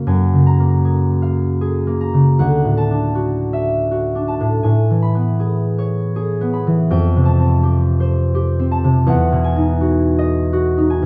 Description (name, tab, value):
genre	classical, solo harp piece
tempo	74-84 BPM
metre	3/4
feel	rubato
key	unclear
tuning	A4 = 440 Hz
part	concert harp	solo	0.0-11.1 s	D2 to Db6	-16 LUFS	equal	none
room	moderate large studio reverb, RT60 1.3 s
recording	none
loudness	-17 LUFS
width	mono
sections	0.1-11.1 A section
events	none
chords	0.1 Gbmaj9; 2.4 Dadd9; 4.7 Amaj9; 6.9 Fadd9; 9.1 Emaj9